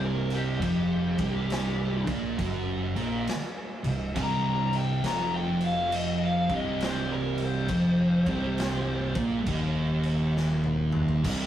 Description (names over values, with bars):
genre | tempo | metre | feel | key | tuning
stoner and doom metal | 68 BPM | 4/4 | swing 64% on 8ths | C minor | A4 = 440 Hz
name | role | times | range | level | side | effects
fuzz lead guitar | melody | 0.0-9.2 s | G4 to Bb5 | -32 LUFS | left 4 dB | distortion
thick fuzz guitar | riff | 0.0-11.5 s | C2 to Bb3 | -33 LUFS | left 1 dB | distortion
thick fuzz guitar | riff | 0.0-11.5 s | C2 to Bb3 | -28 LUFS | right 2 dB | distortion
thick fuzz guitar | riff | 0.0-11.5 s | C2 to Bb3 | -34 LUFS | equal | distortion
growling fingered electric bass | bass | 0.0-11.5 s | C1 to Bb1 | -37 LUFS | equal | overdrive
raw garage drum kit | drums | 0.3-11.5 s | crash cymbal, kick drum, snare drum, toms | -34 LUFS | equal | none
room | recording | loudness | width
wet studio reverb, RT60 0.6 s | rough rehearsal-room recording, tube saturation | -25 LUFS | side -11 dB against mid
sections
0.0-11.2 A section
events
lead electric guitar solo 0.0-11.2; drum fill 10.4-11.2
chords
0.0 Cm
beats
| 0.62 1.51 2.39 3.27 | 4.16 5.04 5.93 6.82 | 7.70 8.59 9.47 10.36 | 11.25